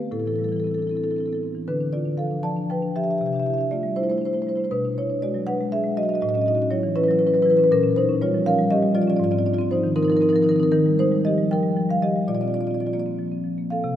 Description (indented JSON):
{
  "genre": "classical, contemporary piece for solo marimba",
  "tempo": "79 BPM (dotted quarters)",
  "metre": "6/8",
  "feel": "straight",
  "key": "unclear",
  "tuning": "A4 = 440 Hz",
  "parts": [
    { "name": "marimba with medium mallets", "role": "solo", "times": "0.0-14.0 s", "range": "Ab2 to A5", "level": "-20 LUFS", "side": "equal", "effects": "none" }
  ],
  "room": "wet concert hall reverb, RT60 2.2 s",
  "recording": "none",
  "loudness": "-20 LUFS",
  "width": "side -11 dB against mid",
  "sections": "0.0-1.7 A section; 1.7-13.8 B section",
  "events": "none",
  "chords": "0.1 Am7; 1.7 Dm6; 3.2 C69; 4.7 Bm6; 6.2 A69; 7.7 Bbm6; 9.2 Ab69; 10.7 Ebadd9; 12.3 Bbadd9",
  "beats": "| 0.11 0.91 | 1.69 2.45 | 3.21 3.96 | 4.71 5.47 | 6.21 6.96 | 7.71 8.45 | 9.20 9.96 | 10.72 11.49 | 12.28 13.06 | 13.84"
}